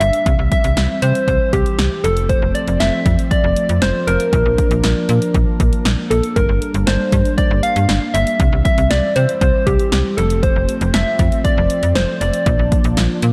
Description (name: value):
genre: synth-pop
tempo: 118 BPM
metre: 4/4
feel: straight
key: unclear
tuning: A4 = 442 Hz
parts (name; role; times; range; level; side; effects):
- soft struck synth lead; melody; 0.0-13.2 s; G4 to F5; -21 LUFS; equal; chorus, delay, shimmer reverb
- chorused pulse-width pad; sustained chords; 0.0-13.3 s; E3 to D4; -25 LUFS; equal; shimmer reverb
- slap-like FM bass; bass; 0.0-13.3 s; F1 to C3; -20 LUFS; equal; none
- punchy analog drum machine; drums; 0.0-13.3 s; hi-hat, kick drum, snare drum; -20 LUFS; equal; overdrive
room: moderate lush hall reverb, RT60 2.2 s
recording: dark, warm production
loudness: -16 LUFS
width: mono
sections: 0.0-13.3 A section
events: none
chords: 0.3 C; 2.0 F; 4.3 Bb; 6.4 Gm; 8.4 C; 10.2 F; 12.5 Bb